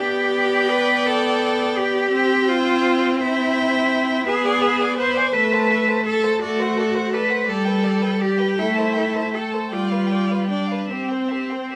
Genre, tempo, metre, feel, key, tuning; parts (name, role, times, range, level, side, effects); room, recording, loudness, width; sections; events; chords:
classical, slow romantic movement for string quartet; 49-57 BPM (dotted quarters); 6/8; rubato; C major; A4 = 439 Hz
rich violin; melody; 0.0-11.8 s; D5 to A5; -31 LUFS; equal
rich violin; second line; 0.0-11.8 s; G4 to D5; -30 LUFS; equal
clear viola; accompaniment; 0.0-11.8 s; G3 to C4; -25 LUFS; equal
rich cello; bass; 0.0-11.8 s; C4 to C5; -23 LUFS; equal
light reverb; -20 LUFS; mono
0.0-11.8 A section
0.0 G/B; 2.1 C; 4.3 E7/B; 5.3 Am; 6.4 D7/A; 7.5 G; 8.6 Am7; 9.7 G7; 10.9 C